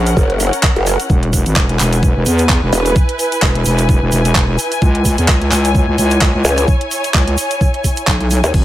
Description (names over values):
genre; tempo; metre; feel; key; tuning
bass house; 129 BPM; 4/4; swing 56% on 16ths; unclear; A4 = 440 Hz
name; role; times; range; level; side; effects
wobble bass; bass; 0.0-8.6 s; E1 to E2; -15 LUFS; equal; chorus, overdrive, sidechain pumping
dark studio string section; texture; 0.0-8.6 s; C#4 to G#5; -20 LUFS; left 1 dB; sidechain pumping
garage drum kit; drums; 0.1-8.6 s; crash cymbal, handclaps, hi-hat; -19 LUFS; right 1 dB; overdrive
tube shaker; percussion; 0.1-8.6 s; none; -25 LUFS; right 3 dB; none
growl bass; bass; 0.2-2.9, 6.4-8.5 s; E1 to D#2; -14 LUFS; equal; chorus, tube saturation, sidechain pumping
electronic kick drum; drums; 0.2-8.6 s; none; -14 LUFS; equal; none
room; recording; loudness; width
little or no reverb; none; -11 LUFS; side -14 dB against mid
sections
0.0-8.6 A section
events
none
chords
0.0 F#; 1.1 E; 4.8 C#m